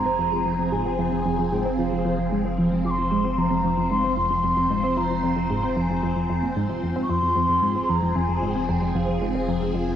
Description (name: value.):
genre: ambient, sequencer-driven space music.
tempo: 113 BPM.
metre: 4/4.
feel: straight.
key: F minor.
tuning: A4 = 437 Hz.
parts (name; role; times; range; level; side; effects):
mellow hollow wooden flute; melody; 0.0-9.5 s; F5 to D6; -26 LUFS; equal; ping-pong delay.
phased string machine; sustained chords; 0.0-10.0 s; F3 to C5; -27 LUFS; equal; ensemble chorus, phaser, cassette tape.
tight sequenced synth; riff; 0.0-10.0 s; F2 to C4; -25 LUFS; equal; chorus, phaser, cassette tape, ping-pong delay.
round analog bass; bass; 0.0-10.0 s; F1; -33 LUFS; equal; none.
room: wet lush hall reverb, RT60 2.5 s.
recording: home recording on cassette.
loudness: -21 LUFS.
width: side -9 dB against mid.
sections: 0.0-10.0 A section.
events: none.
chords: 0.0 Fm.